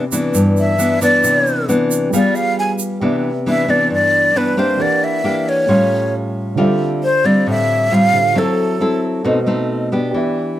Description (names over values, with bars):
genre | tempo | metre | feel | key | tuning
bossa nova | 135 BPM | 4/4 | straight | C major | A4 = 440 Hz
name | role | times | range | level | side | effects
dark grand piano | accompaniment | 0.0-10.6 s | D3 to B#5 | -24 LUFS | right 4 dB | none
nylon-string guitar | accompaniment | 0.0-10.6 s | G2 to A4 | -16 LUFS | left 1 dB | none
egg shaker | percussion | 0.1-3.0 s | none | -26 LUFS | right 7 dB | none
breathy hollow jazz flute | melody | 0.6-9.0 s | A4 to Ab5 | -15 LUFS | equal | none
room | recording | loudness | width
light reverb | none | -13 LUFS | side -13 dB against mid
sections
0.0-3.0 A section; 3.0-10.6 B section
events
flute solo 0.0-3.0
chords
0.0 Cmaj9; 2.1 G7b9; 3.0 Cmaj9; 4.8 Em7b5; 5.7 A7alt; 6.6 Dm11; 8.4 F#m7b5; 9.3 B7b9